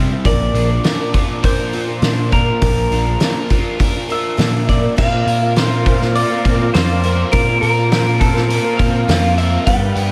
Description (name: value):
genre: folk rock and heartland rock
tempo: 102 BPM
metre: 4/4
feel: straight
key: unclear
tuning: A4 = 440 Hz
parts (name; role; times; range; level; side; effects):
- picked acoustic archtop guitar; accompaniment; 0.0-10.1 s; G2 to B4; -26 LUFS; equal; none
- crunchy overdriven guitar; riff; 0.0-10.1 s; Bb2 to C5; -25 LUFS; equal; analog chorus
- picked electric bass; bass; 0.0-10.1 s; Bb1 to C3; -20 LUFS; equal; none
- loose indie drum kit; drums; 0.2-10.1 s; crash cymbal, hi-hat, kick drum, snare drum; -20 LUFS; equal; none
- electric guitar through a small old amp; melody; 0.3-10.1 s; A4 to G5; -22 LUFS; equal; phaser, tape echo
- clear studio string section; sustained chords; 5.0-10.1 s; Bb3 to B4; -30 LUFS; equal; none
room: moderate huge ambient reverb, RT60 8.4 s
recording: dreamy mix soaked in reverb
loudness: -16 LUFS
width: mono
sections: 0.0-5.0 A section; 5.0-10.1 B section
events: none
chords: 0.2 Bb; 5.0 Bbsus2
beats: | 0.25 0.84 1.43 2.02 | 2.62 3.21 3.80 4.39 | 4.98 5.57 6.15 6.74 | 7.33 7.91 8.50 9.09 | 9.67